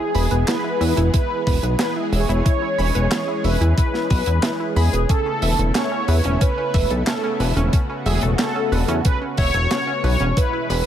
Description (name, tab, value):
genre	synthwave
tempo	91 BPM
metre	4/4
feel	straight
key	unclear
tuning	A4 = 439 Hz
part	mellow synth brass	melody	0.0-10.9 s	G#4 to C#5	-24 LUFS	equal	chorus, phaser, tape echo
part	analog string pad	sustained chords	0.0-10.9 s	B2 to G#4	-27 LUFS	right 1 dB	ensemble chorus, sidechain pumping
part	analog pluck	arpeggios	0.0-10.8 s	C#4 to B5	-28 LUFS	right 1 dB	chorus, digital delay
part	deep reggae drum kit	drums	0.1-10.8 s	handclaps, hi-hat, snare drum	-26 LUFS	right 2 dB	none
part	chorused synth bass	bass	0.2-10.8 s	E1 to E2	-19 LUFS	equal	sidechain pumping
part	electronic kick drum	drums	1.1-10.5 s	none	-19 LUFS	equal	none
room	light reverb, small room reverb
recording	none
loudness	-17 LUFS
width	side -10 dB against mid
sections	0.0-10.9 A section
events	none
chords	0.0 E; 5.1 Aadd9/E